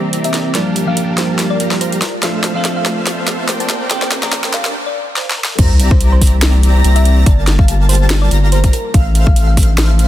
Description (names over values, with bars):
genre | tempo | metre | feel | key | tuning
future bass | 143 BPM | 4/4 | swing 55% on 16ths, half-time | unclear | A4 = 436 Hz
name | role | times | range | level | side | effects
clean electric guitar | accompaniment | 0.0-4.8 s | E3 to A4 | -20 LUFS | right 2 dB | warbly pitch drift, sidechain pumping, tape echo
airy breathy pad | sustained chords | 0.0-10.1 s | C3 to D5 | -27 LUFS | equal | chorus, sidechain pumping
dense compressed supersaw | riff | 0.0-10.1 s | G3 to Bb5 | -22 LUFS | equal | sidechain pumping, low-pass filter
riser and sub drop | sound effects | 2.0-7.3 s | none | -25 LUFS | equal | none
trap drum kit | drums | 0.1-10.1 s | crash cymbal, hi-hat, snare drum | -19 LUFS | equal | soft clipping on snare, high-pass filter on snare, high-pass filter on hats, high-pass filter on cymbals
thumb-piano-like synth pluck | melody | 0.2-9.7 s | Bb4 to Bb5 | -24 LUFS | left 1 dB | chorus, phaser, sidechain pumping, tape echo
airy dreamy lead | arpeggios | 5.6-10.1 s | F5 to Bb5 | -25 LUFS | left 1 dB | chorus, sidechain pumping
saturated sub bass | bass | 5.6-10.1 s | G1 to C2 | -11 LUFS | equal | sidechain pumping
electronic kick drum | drums | 5.6-9.7 s | none | -11 LUFS | equal | none
room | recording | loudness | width
digital ambience | dense, heavily limited modern master, high-pass filter | -11 LUFS | side -13 dB against mid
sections
0.0-5.6 A section; 5.6-10.1 B section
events
build-up 0.0-5.6; drum fill 0.0-4.7, 5.2-5.6; filter sweep on supersaw synth 0.0-5.6; filter sweep 0.0-5.6; break 4.7-5.6; drop 5.6-10.1; impact 5.6-7.3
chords
0.0 C7; 0.6 Gm7; 2.0 Dm7; 3.7 Bb69; 5.6 C7; 7.3 Gm7; 8.7 Dm7/A